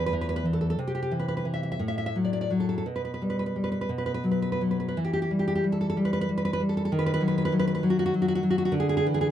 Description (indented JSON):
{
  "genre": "romantic piece for solo classical guitar",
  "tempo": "54-67 BPM (dotted quarters)",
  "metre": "6/8",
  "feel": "rubato",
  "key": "E minor",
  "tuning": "A4 = 440 Hz",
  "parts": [
    { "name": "nylon-string guitar", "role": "solo", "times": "0.0-9.3 s", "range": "E2 to E5", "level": "-24 LUFS", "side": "equal", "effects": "none" }
  ],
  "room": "light reverb",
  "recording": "dry, close 1970s-style studio recording",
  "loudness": "-24 LUFS",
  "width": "side -10 dB against mid",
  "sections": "0.0-5.0 A section; 5.0-9.3 B section",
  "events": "none",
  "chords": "0.0 N.C.; 0.8 C; 1.8 Dadd9/A; 2.9 G/B; 3.9 B5; 5.0 Em; 6.9 D#m; 8.7 E7/D"
}